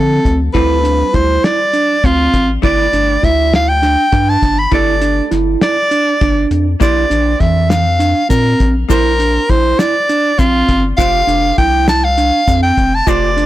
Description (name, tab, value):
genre	progressive instrumental, band music in an uneven meter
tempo	201 BPM (eighths)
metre	7/8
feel	straight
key	unclear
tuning	A4 = 441 Hz
part	bright soprano saxophone	melody	0.0-13.5 s	F4 to B5	-14 LUFS	equal	none
part	hollow-body jazz guitar	accompaniment	0.0-13.5 s	F3 to C5	-25 LUFS	equal	double-tracked left and right
part	mellow tine electric piano	arpeggios	0.0-13.5 s	E3 to F4	-17 LUFS	right 4 dB	none
part	rubbery square bass	bass	0.0-13.5 s	F1 to D3	-17 LUFS	left 1 dB	none
part	cloth-damped thuddy drum kit	drums	0.3-13.5 s	hi-hat, kick drum, snare drum	-16 LUFS	left 1 dB	none
part	egg shaker	percussion	6.8-13.4 s	none	-34 LUFS	left 7 dB	none
room	studio reverb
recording	blown-out, overdriven recording, overdrive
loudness	-10 LUFS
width	side -14 dB against mid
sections	0.0-13.5 A section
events	none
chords	0.0 Dm; 2.6 G; 6.8 Bb; 11.0 F